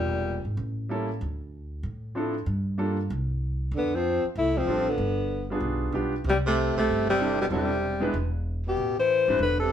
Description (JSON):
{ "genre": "jazz, small-group swing and bop", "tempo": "190 BPM", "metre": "4/4", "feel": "swing 62% on 8ths", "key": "C major", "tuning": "A4 = 440 Hz", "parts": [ { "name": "breathy alto saxophone", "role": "melody", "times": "0.0-0.5, 3.8-9.7 s", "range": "G3 to C5", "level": "-26 LUFS", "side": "left 3 dB", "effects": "none" }, { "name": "breathy tenor saxophone", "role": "second line", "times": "0.0-0.5, 3.7-9.7 s", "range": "Bb2 to A3", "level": "-29 LUFS", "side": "right 3 dB", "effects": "none" }, { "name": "upright bass", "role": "bass", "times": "0.0-9.7 s", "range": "E1 to A2", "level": "-30 LUFS", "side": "equal", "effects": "none" }, { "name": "clear concert grand piano", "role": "accompaniment", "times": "0.9-9.4 s", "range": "F3 to B4", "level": "-30 LUFS", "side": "right 1 dB", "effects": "none" } ], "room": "wet studio reverb, RT60 0.8 s", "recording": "heard from further back in the room", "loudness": "-24 LUFS", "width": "side -9 dB against mid", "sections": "0.0-8.8 A section", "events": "none", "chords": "0.0 Edim; 0.6 A7b9; 1.2 Dm7; 2.5 Gm7; 3.1 N.C.; 3.7 F6; 5.0 G7b9; 6.3 C69; 8.1 N.C.; 8.8 Am9", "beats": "0.26 0.58 0.89 | 1.21 1.52 1.84 2.15 | 2.47 2.79 3.10 3.42 | 3.73 4.05 4.36 4.68 | 4.99 5.31 5.62 5.94 | 6.25 6.57 6.88 7.20 | 7.51 7.83 8.14 8.45 | 8.77 9.08 9.40 9.71" }